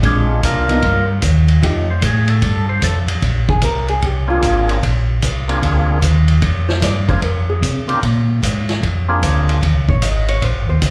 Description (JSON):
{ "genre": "soul jazz organ trio", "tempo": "150 BPM", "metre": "4/4", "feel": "swing 66% on 8ths", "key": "Bb mixolydian", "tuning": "A4 = 440 Hz", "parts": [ { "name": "vintage hollow-body jazz guitar", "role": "accompaniment", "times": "0.0-10.9 s", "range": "F3 to Eb5", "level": "-24 LUFS", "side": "equal", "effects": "slapback echo" }, { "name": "mellow tonewheel organ", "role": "bass", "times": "0.0-10.9 s", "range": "G1 to C3", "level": "-18 LUFS", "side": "equal", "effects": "chorus vibrato, slow rotary speaker" }, { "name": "vintage drum kit", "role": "drums", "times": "0.0-10.9 s", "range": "hi-hat, kick drum, ride cymbal, snare drum", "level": "-23 LUFS", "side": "equal", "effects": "none" }, { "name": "percussive tonewheel organ", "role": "melody", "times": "0.1-9.6 s", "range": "Ab3 to C5", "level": "-22 LUFS", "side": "equal", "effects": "slow rotary speaker, slapback echo" } ], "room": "light reverb", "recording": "live gig heard through the venue's PA, club reverb, lossy compression artefacts", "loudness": "-16 LUFS", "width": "mono", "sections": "0.0-3.2 A section; 3.2-10.9 A section", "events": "tonewheel organ solo 0.0-3.2; hollow-body jazz guitar solo 3.2-10.9", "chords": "0.0 Bb9; 0.8 Eb; 1.6 F9; 3.2 Bb9; 9.6 Eb7" }